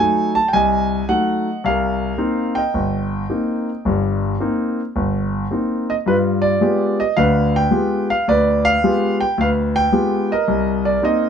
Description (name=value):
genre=solo jazz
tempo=108 BPM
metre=4/4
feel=swing 68% on 8ths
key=C minor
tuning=A4 = 440 Hz
part: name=warm concert grand piano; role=solo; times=0.0-11.3 s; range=G1 to A5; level=-16 LUFS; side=equal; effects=none
room=light reverb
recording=dark, warm production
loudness=-16 LUFS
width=side -7 dB against mid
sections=0.0-11.3 A section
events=none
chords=0.0 F#dim7; 1.6 Cm7; 6.1 G7b9; 10.5 Cm7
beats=0.52 1.07 | 1.63 2.18 2.74 3.29 | 3.84 4.40 4.95 5.50 | 6.06 6.61 7.16 7.71 | 8.27 8.82 9.37 9.92 | 10.47 11.03